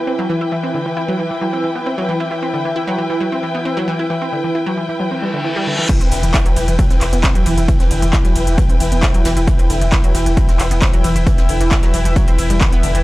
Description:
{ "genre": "driving peak-time techno", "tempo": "134 BPM", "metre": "4/4", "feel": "straight", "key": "E minor", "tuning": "A4 = 444 Hz", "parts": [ { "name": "analog pluck", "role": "riff", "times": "0.0-13.0 s", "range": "D3 to E4", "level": "-22 LUFS", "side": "equal", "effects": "chorus, sidechain pumping, tape echo" }, { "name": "analog drone", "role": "drone", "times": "0.0-13.0 s", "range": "E3 to E4", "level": "-24 LUFS", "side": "equal", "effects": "chorus, sidechain pumping" }, { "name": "dark symphonic string section", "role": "texture", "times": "0.0-13.0 s", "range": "E4 to G5", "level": "-23 LUFS", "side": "left 1 dB", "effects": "sidechain pumping" }, { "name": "reverse cymbal and impact", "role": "sound effects", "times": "5.2-7.7 s", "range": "none", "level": "-24 LUFS", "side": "equal", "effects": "none" }, { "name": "electronic kick drum", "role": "drums", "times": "5.9-12.7 s", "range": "none", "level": "-15 LUFS", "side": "equal", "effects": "overdrive, small room ambience" }, { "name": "soft brush drum kit", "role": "drums", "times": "5.9-13.0 s", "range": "hi-hat, snare drum", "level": "-33 LUFS", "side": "left 2 dB", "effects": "none" }, { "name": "techno drum kit", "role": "drums", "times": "5.9-13.0 s", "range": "crash cymbal, handclaps, hi-hat, ride cymbal", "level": "-23 LUFS", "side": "equal", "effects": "overdrive, small room ambience" }, { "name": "saturated sub bass", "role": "bass", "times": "6.0-13.0 s", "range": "E1", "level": "-18 LUFS", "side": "equal", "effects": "sidechain pumping, low-pass filter" } ], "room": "studio ambience", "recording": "dry, gritty hardware recording", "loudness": "-14 LUFS", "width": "side -18 dB against mid", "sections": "0.0-5.9 A section; 5.9-13.0 B section", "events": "reverse cymbal 5.2-5.9; drop 5.9-13.0; impact 5.9-7.7", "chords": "0.0 Em" }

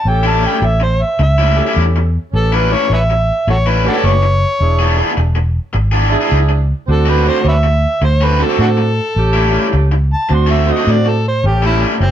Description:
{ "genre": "blues", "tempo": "106 BPM", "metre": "4/4", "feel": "swing 65% on 8ths", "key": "A mixolydian", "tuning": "A4 = 442 Hz", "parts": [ { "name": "overdriven harmonica", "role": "melody", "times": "0.0-12.1 s", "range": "C4 to C6", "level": "-17 LUFS", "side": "equal", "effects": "none" }, { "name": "mellow saxophone section", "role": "stabs", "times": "0.1-12.1 s", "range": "A3 to B4", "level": "-20 LUFS", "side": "right 4 dB", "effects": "slapback echo" }, { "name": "vintage muted fingered electric bass", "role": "bass", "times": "0.1-12.1 s", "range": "E1 to A2", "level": "-14 LUFS", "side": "equal", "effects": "none" }, { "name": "raw garage guitar", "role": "riff", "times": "0.2-12.1 s", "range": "A2 to G#4", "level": "-18 LUFS", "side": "left 3 dB", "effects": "overdrive" } ], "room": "light reverb", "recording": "none", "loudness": "-11 LUFS", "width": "side -10 dB against mid", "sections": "0.0-12.1 A section", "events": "harmonica solo 0.0-12.1", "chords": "0.0 A7; 4.6 E7; 6.9 D7; 9.2 A7; 10.3 D7; 11.4 A7" }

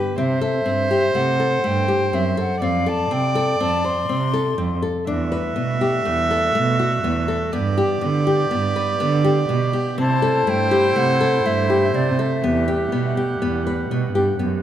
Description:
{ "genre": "contemporary instrumental, chamber music in an uneven meter", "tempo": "122 BPM", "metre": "5/4", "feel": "straight", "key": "E minor", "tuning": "A4 = 441 Hz", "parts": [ { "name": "dark viola", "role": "second line", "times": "0.0-14.6 s", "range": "G4 to E5", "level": "-23 LUFS", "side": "right 3 dB", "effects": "none" }, { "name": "nylon-string guitar", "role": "arpeggios", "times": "0.0-14.6 s", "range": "A3 to C5", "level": "-23 LUFS", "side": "left 3 dB", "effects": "none" }, { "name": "hollow concert flute", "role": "melody", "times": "0.2-4.8, 10.0-13.2 s", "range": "D5 to C6", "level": "-25 LUFS", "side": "left 4 dB", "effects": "none" }, { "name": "muted cello", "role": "bass", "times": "0.2-14.6 s", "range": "E2 to D3", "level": "-22 LUFS", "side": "right 3 dB", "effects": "none" }, { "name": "warm woodwind section", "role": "sustained chords", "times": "5.1-14.6 s", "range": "D3 to F#5", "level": "-31 LUFS", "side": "equal", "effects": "none" } ], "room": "moderate concert hall reverb, RT60 1.9 s", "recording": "none", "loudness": "-17 LUFS", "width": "side -10 dB against mid", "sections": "0.0-14.6 A section", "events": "none", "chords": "0.2 C6; 2.6 F6; 5.1 Em11; 7.5 G6; 10.0 C69; 12.4 Em11" }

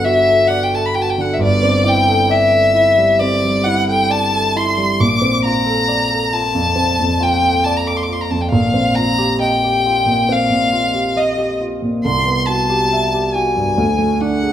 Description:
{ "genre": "classical, impressionist duo for violin and grand piano", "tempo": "68 BPM", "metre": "4/4", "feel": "rubato", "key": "unclear", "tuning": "A4 = 440 Hz", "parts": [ { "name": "clear violin", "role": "melody", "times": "0.0-14.5 s", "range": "D5 to D6", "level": "-15 LUFS", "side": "left 2 dB", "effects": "none" }, { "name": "warm concert grand piano", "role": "accompaniment", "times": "0.0-14.5 s", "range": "G1 to E5", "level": "-17 LUFS", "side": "right 1 dB", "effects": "none" } ], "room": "moderate recital hall reverb, RT60 1.5 s", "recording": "none", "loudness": "-13 LUFS", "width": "side -10 dB against mid", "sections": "0.0-14.5 A section", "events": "none", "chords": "0.0 Gmaj9; 1.4 C69/G; 5.0 Bbmaj9; 8.5 Eb69/Bb; 12.0 Cmaj7#11; 13.8 D(#11)" }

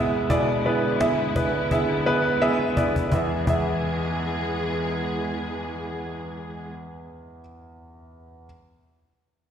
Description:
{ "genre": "piano-driven pop", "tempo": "85 BPM", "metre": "4/4", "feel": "swing 56% on 16ths", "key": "E major", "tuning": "A4 = 440 Hz", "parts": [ { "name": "clear concert grand piano", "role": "accompaniment", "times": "0.0-8.5 s", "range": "E2 to E5", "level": "-24 LUFS", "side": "right 1 dB", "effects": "slapback echo" }, { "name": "warm symphonic string section", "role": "sustained chords", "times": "0.0-6.7 s", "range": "B2 to G#4", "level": "-28 LUFS", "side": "left 1 dB", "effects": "none" }, { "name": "cajon", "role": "drums", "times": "0.1-3.7 s", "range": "none", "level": "-27 LUFS", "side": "left 1 dB", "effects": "slapback echo" } ], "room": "moderate lush hall reverb, RT60 2.0 s, studio reverb", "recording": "live gig heard through the venue's PA, recital hall reverb", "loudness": "-22 LUFS", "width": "side -8 dB against mid", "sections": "0.0-3.1 A section; 3.1-5.9 B section", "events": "drum fill 2.4-3.1", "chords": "0.3 E7; 3.1 E" }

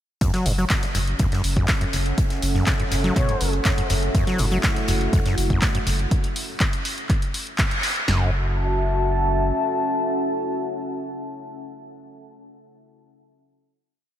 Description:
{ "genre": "acid house", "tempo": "122 BPM", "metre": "4/4", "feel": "straight", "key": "F# minor", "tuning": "A4 = 439 Hz", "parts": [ { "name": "acid bass, saw", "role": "riff", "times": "0.2-8.3 s", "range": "F#1 to F#3", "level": "-26 LUFS", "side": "equal", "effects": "overdrive, sidechain pumping, diffuse ambient delay" }, { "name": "huge arena drum kit", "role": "drums", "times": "0.2-6.0 s", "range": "hi-hat, snare drum", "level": "-36 LUFS", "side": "left 2 dB", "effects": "sidechain pumping on hats, high-pass filter on hats, high-pass filter on snare, high-pass filter on room" }, { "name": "punchy analog drum machine", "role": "drums", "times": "0.2-8.2 s", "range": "kick drum, snare drum", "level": "-22 LUFS", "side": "equal", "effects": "none" }, { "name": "punchy analog drum machine", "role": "drums", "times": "0.2-8.1 s", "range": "handclaps, hi-hat", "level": "-27 LUFS", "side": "equal", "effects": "none" }, { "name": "deep dark ambient pad", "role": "texture", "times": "1.0-12.4 s", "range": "C#4 to F#5", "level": "-31 LUFS", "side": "right 2 dB", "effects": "chorus, built-in reverb, sidechain pumping" }, { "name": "saturated sub bass", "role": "bass", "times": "0.5-9.5 s", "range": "F#1", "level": "-24 LUFS", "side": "equal", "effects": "sidechain pumping" }, { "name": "silver concert flute", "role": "melody", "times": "3.2-3.5 s", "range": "C#5", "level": "-33 LUFS", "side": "equal", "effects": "tape echo" }, { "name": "dark analog pad", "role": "sustained chords", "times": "4.1-12.2 s", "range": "A3 to A5", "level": "-26 LUFS", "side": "left 1 dB", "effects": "chorus, sidechain pumping" } ], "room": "moderate huge ambient reverb, RT60 4.1 s", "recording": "dreamy mix soaked in reverb", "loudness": "-20 LUFS", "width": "side -11 dB against mid", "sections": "0.2-8.1 groove; 8.1-12.0 final chord", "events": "band accent 7.6", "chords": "0.2 F#m7" }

